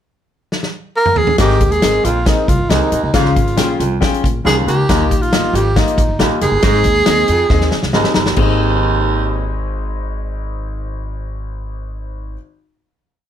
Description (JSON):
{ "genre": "uptempo 1960s-style soul", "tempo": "137 BPM", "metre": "4/4", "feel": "straight", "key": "Ab major", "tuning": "A4 = 440 Hz", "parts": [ { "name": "natural country drum kit", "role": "drums", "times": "0.5-8.5 s", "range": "crash cymbal, hi-hat, kick drum, snare drum, toms", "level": "-16 LUFS", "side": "equal", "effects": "none" }, { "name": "breathy tenor saxophone", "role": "melody", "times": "1.0-7.9 s", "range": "Eb4 to Bb4", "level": "-16 LUFS", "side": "right 2 dB", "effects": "plate reverb" }, { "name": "warm upright piano", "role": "accompaniment", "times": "1.4-12.4 s", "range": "Ab1 to Bb5", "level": "-21 LUFS", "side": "left 6 dB", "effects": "none" }, { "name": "raspy baritone saxophone", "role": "riff", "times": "1.4-9.6 s", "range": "Eb2 to Ab2", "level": "-20 LUFS", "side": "right 6 dB", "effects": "none" }, { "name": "upright bass", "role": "bass", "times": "1.4-12.4 s", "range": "F1 to F2", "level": "-19 LUFS", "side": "equal", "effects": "none" } ], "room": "moderate studio reverb, RT60 0.6 s", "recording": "none", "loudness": "-12 LUFS", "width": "side -10 dB against mid", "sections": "0.0-1.4 pickup bar; 1.4-8.4 A section; 8.4-11.8 final chord", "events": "drum fill 0.5-1.4, 7.5-8.4; upright piano fill 7.7-8.4", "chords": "0.0 N.C.; 1.4 Abadd9; 3.1 Db; 4.9 Ebadd9; 6.6 Ab", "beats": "0.07 0.51 0.95 | 1.38 1.82 2.26 2.70 | 3.13 3.57 4.01 4.45 | 4.89 5.32 5.76 6.20 | 6.63 7.07 7.50 7.94 | 8.37 8.81 9.24 9.68 | 10.11 10.54 10.98 11.41" }